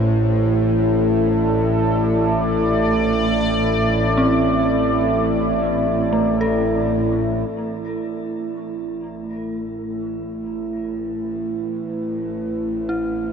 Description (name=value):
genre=dark ambient drone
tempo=free time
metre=none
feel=none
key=A minor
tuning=A4 = 445 Hz
part: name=sweeping resonant pad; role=sustained chords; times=0.0-13.3 s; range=A3 to D5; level=-21 LUFS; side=right 1 dB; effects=chorus, shimmer reverb
part: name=dark detuned synth bell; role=arpeggios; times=0.0-13.3 s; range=A3 to A4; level=-24 LUFS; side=equal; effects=chorus, diffuse ambient delay, shimmer reverb
part: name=bowed-like drone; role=drone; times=0.0-13.3 s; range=A1 to A2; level=-22 LUFS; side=equal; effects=built-in reverb
room=wet huge ambient reverb, RT60 7.6 s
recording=dark, warm production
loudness=-18 LUFS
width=side -6 dB against mid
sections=0.0-7.5 A section; 7.5-13.3 B section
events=none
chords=0.0 Am